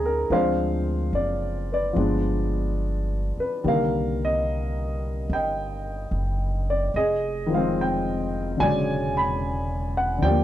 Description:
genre	jazz ballad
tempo	72 BPM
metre	4/4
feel	swing 68% on 8ths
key	unclear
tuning	A4 = 440 Hz
part	warm baby grand piano	accompaniment	0.0-10.4 s	C#3 to B5	-24 LUFS	equal	none
part	upright bass	bass	0.0-10.4 s	E1 to Eb2	-28 LUFS	equal	none
room	studio reverb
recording	dry, close 1970s-style studio recording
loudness	-22 LUFS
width	side -12 dB against mid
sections	0.0-10.4 A section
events	none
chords	0.3 Dm7b5; 2.0 G7b9; 3.6 Cm9; 7.0 Fm9; 8.6 E13

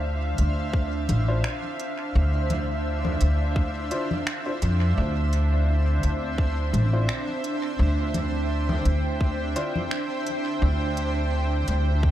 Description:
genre	ambient dub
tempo	85 BPM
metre	4/4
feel	swing 55% on 16ths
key	D minor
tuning	A4 = 440 Hz
part	granular cloud pad	sustained chords	0.0-12.1 s	D4 to G5	-29 LUFS	right 1 dB	built-in reverb
part	upright bass	bass	0.0-12.1 s	A1 to F2	-23 LUFS	equal	none
part	organic electronic drum kit	drums	0.4-11.8 s	congas, finger snaps, hi-hat	-32 LUFS	left 1 dB	overdrive, dub echo
part	electronic kick drum	drums	0.7-12.1 s	none	-24 LUFS	equal	overdrive
part	dark upright piano	stabs	1.3-9.8 s	D4 to C5	-36 LUFS	left 2 dB	vintage 12-bit sampler grit, dub echo
part	bubbling stepped-filter texture	texture	5.3-12.1 s	C4 to C5	-37 LUFS	right 2 dB	chorus, built-in reverb
room	digital ambience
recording	none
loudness	-22 LUFS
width	side -12 dB against mid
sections	0.0-12.1 A section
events	none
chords	0.0 Dm9

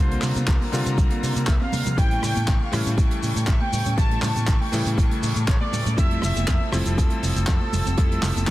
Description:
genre	nu-disco, nu disco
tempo	120 BPM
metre	4/4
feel	straight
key	unclear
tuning	A4 = 444 Hz
part	mellow trumpet section	melody	0.0-8.5 s	A4 to A5	-31 LUFS	equal	analog delay
part	bright electric grand piano	accompaniment	0.0-8.5 s	C#3 to F4	-29 LUFS	left 1 dB	sidechain pumping, analog delay
part	clear symphonic string section	sustained chords	0.0-8.5 s	Bb3 to E6	-35 LUFS	left 4 dB	sidechain pumping
part	soft round pluck	arpeggios	0.0-8.5 s	C3 to C#4	-32 LUFS	right 2 dB	chorus, cassette tape, sidechain pumping, analog delay
part	fingered electric bass with an envelope filter	bass	0.0-8.5 s	F1 to C3	-25 LUFS	equal	none
part	damped 70s drum kit	drums	0.1-8.5 s	handclaps, hi-hat, rim click, shaker	-30 LUFS	right 1 dB	small room reverb
part	congas	percussion	0.2-8.5 s	none	-34 LUFS	right 4 dB	none
part	electronic kick drum	drums	0.5-8.5 s	none	-21 LUFS	equal	small room reverb
room	studio reverb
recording	dense, heavily limited modern master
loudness	-19 LUFS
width	side -16 dB against mid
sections	0.0-8.5 A section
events	none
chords	0.0 C7sus4; 2.0 A7; 6.0 Fmaj7

